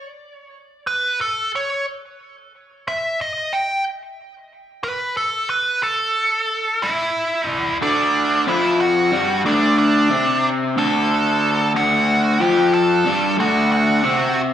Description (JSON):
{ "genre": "rock", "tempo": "61 BPM (dotted quarters)", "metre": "6/8", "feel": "straight", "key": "D major", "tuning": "A4 = 441 Hz", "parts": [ { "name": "nasal lead guitar with a parked wah", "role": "melody", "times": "0.9-14.4 s", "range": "D4 to A5", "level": "-20 LUFS", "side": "right 1 dB", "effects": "overdrive, slapback echo" }, { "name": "crunchy overdriven guitar", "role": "riff", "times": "7.8-14.5 s", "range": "D2 to C4", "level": "-17 LUFS", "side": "left 1 dB", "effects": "none" } ], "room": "light reverb", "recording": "live gig heard through the venue's PA, club reverb", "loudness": "-16 LUFS", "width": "side -10 dB against mid", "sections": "0.0-7.8 A section; 7.8-14.5 B section", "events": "none", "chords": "0.0 N.C.; 7.8 D" }